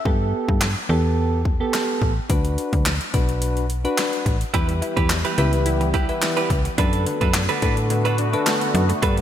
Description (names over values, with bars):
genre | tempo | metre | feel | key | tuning
dance-pop | 107 BPM | 4/4 | straight | unclear | A4 = 439 Hz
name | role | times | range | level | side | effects
soft electric-piano-like synth keys | accompaniment | 0.0-9.2 s | B3 to B4 | -25 LUFS | left 1 dB | chorus, tremolo, sidechain pumping
slap-like FM bass | bass | 0.1-9.2 s | A1 to A2 | -22 LUFS | equal | sidechain pumping
pop drum kit | drums | 0.1-9.2 s | handclaps, hi-hat, kick drum, snare drum | -23 LUFS | equal | gated reverb
sweeping resonant pad | sustained chords | 4.5-9.2 s | D3 to G4 | -28 LUFS | equal | chorus, sidechain pumping
wide unison pluck | arpeggios | 4.5-9.2 s | D3 to E4 | -31 LUFS | equal | sidechain pumping, ping-pong delay
direct-recorded clean electric guitar | riff | 4.5-9.2 s | D4 to B4 | -26 LUFS | right 7 dB | lush chorus
riser | sound effects | 9.0-9.2 s | none | barely audible | none | none
room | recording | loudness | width
light reverb | bright 1980s-style digital production | -18 LUFS | side -10 dB against mid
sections
0.0-9.2 A section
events
none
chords
0.1 Gadd9; 2.3 D6; 4.5 Em; 6.8 Bm7/F#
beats
| 0.05 0.61 1.18 1.74 | 2.30 2.86 3.42 3.98 | 4.54 5.10 5.66 6.22 | 6.78 7.34 7.91 8.46 | 9.03